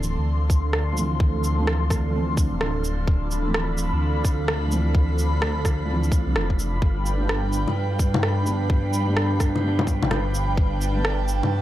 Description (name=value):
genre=future garage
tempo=128 BPM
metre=4/4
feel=swing 64% on 16ths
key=D dorian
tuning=A4 = 441 Hz
part: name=felt-muted upright piano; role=accompaniment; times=0.0-11.6 s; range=D3 to D4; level=-30 LUFS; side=right 1 dB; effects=sidechain pumping, tape echo
part: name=airy breathy pad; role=sustained chords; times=0.0-11.6 s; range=D4 to C6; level=-29 LUFS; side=right 2 dB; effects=chorus, phaser, sidechain pumping
part: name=dark detuned saw bass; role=bass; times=0.0-11.6 s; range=D1 to G2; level=-24 LUFS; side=equal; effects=tube saturation, sidechain pumping
part: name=electronic shaker, rim click and bongos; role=drums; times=0.0-11.5 s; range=none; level=-27 LUFS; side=left 1 dB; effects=none
part: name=wind-like tuned noise texture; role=texture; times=0.1-11.6 s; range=F3 to F5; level=-37 LUFS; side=equal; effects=built-in reverb
part: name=electronic kick drum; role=drums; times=0.5-10.7 s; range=none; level=-21 LUFS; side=equal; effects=none
room=little or no reverb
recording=none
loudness=-20 LUFS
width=side -14 dB against mid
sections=0.0-11.6 A section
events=none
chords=0.0 Dm7; 6.8 G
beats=0.26 0.73 | 1.20 1.67 2.14 2.61 | 3.08 3.54 4.01 4.48 | 4.95 5.42 5.89 6.36 | 6.83 7.29 7.76 8.23 | 8.70 9.17 9.64 10.11 | 10.57 11.04 11.51